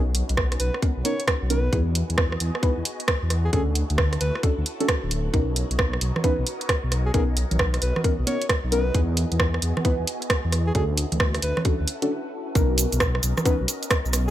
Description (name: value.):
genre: UK garage, two-step garage.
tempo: 133 BPM.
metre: 4/4.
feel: swing 65% on 16ths.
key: B major.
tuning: A4 = 442 Hz.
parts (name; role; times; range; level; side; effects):
soft string machine; sustained chords; 0.0-14.3 s; B3 to D#5; -37 LUFS; left 1 dB; phaser, ensemble chorus, sidechain pumping.
dark detuned saw bass; bass; 0.0-14.3 s; D1 to E2; -24 LUFS; equal; none.
garage drum kit; drums; 0.1-14.2 s; congas, hi-hat, rim click; -26 LUFS; right 2 dB; overdrive, small room ambience.
electronic kick drum; drums; 0.4-14.0 s; none; -23 LUFS; equal; overdrive, small room ambience.
mellow alto saxophone; melody; 0.6-14.3 s; G#4 to C#5; -33 LUFS; equal; dub echo.
deep mellow chord stab; stabs; 0.8-13.5 s; B3 to B4; -28 LUFS; equal; chorus, dub echo.
cabasa; percussion; 12.6-14.2 s; none; -30 LUFS; right 3 dB; none.
room: little or no reverb.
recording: none.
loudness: -21 LUFS.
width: side -13 dB against mid.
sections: 0.0-12.6 A section; 12.6-14.3 B section.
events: break 12.1-12.6; drop 12.6-14.3.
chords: 0.0 Bmaj9; 1.7 Emaj7; 3.5 Dmaj7; 5.3 Bmaj9; 8.9 Emaj7; 10.8 Dmaj7; 12.6 Bmaj9.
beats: 0.38 0.83 1.28 | 1.73 2.18 2.63 3.08 | 3.53 3.98 4.43 4.89 | 5.34 5.79 6.24 6.69 | 7.14 7.59 8.04 8.49 | 8.95 9.40 9.85 10.30 | 10.75 11.20 11.65 12.10 | 12.55 13.01 13.46 13.91.